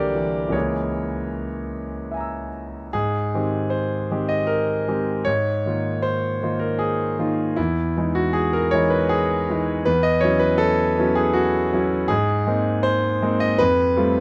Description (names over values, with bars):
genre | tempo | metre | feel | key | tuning
classical, impressionist solo piano | 71-82 BPM | 3/4 | rubato | unclear | A4 = 440 Hz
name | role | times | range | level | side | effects
clear concert grand piano | solo | 0.0-14.2 s | C2 to Fb6 | -22 LUFS | equal | none
room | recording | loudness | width
little or no reverb | close, detailed microphones | -22 LUFS | mono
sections
0.0-2.9 A section; 2.9-14.2 B section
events
none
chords
0.0 C7#11; 0.5 Dbm6; 2.9 Abmaj7; 5.3 Db69/Ab; 7.6 Emaj7; 9.9 Emaj13; 12.1 Abadd9; 13.6 Fadd9